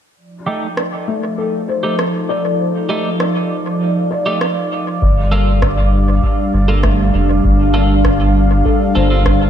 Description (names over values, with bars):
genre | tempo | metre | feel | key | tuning
ambient dub | 99 BPM | 4/4 | straight | unclear | A4 = 440 Hz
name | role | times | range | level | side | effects
warm analog pad | sustained chords | 0.2-9.5 s | F3 to F5 | -18 LUFS | equal | chorus
bubbling stepped-filter texture | texture | 0.4-9.5 s | D5 | -27 LUFS | right 2 dB | chorus, built-in reverb
twelve-string electric guitar | stabs | 0.5-9.2 s | A3 to A4 | -24 LUFS | right 2 dB | low-pass filter, dub echo
electronic rim click | drums | 0.8-9.4 s | none | -25 LUFS | right 1 dB | overdrive, dub echo
felt-muted upright piano | arpeggios | 1.1-9.5 s | A3 to D5 | -23 LUFS | left 4 dB | low-pass filter, ping-pong delay
round analog bass | bass | 5.0-9.5 s | F1 to G1 | -14 LUFS | equal | none
electronic kick drum | drums | 5.0-9.4 s | none | -19 LUFS | equal | none
room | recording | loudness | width
moderate lush hall reverb, RT60 1.7 s | dreamy mix soaked in reverb | -13 LUFS | side -9 dB against mid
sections
0.2-9.5 A section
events
filter sweep on analog synth pad 0.2-9.5; filter sweep on clean electric guitar 0.2-9.5; filter sweep on felt piano 0.2-9.5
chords
0.2 F7; 5.0 Gm7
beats
| 0.17 0.78 1.38 1.99 | 2.59 3.20 3.81 4.41 | 5.02 5.62 6.23 6.84 | 7.44 8.05 8.65 9.26